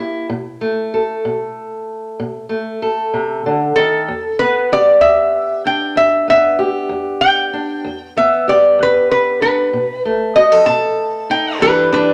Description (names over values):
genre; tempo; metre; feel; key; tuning
acoustic country blues, solo or duo; 64 BPM (dotted quarters); 12/8; straight; E minor; A4 = 442 Hz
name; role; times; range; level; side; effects
fingerpicked steel-string acoustic guitar; accompaniment; 0.0-12.1 s; E2 to A4; -22 LUFS; equal; none
lap resonator guitar; melody; 3.8-12.1 s; D4 to A5; -15 LUFS; equal; none
room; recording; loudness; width
moderate large studio reverb, RT60 1.1 s; none; -15 LUFS; mono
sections
0.0-11.6 A section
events
none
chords
0.3 B7(no3); 4.1 Em7; 9.7 B7; 11.6 Em7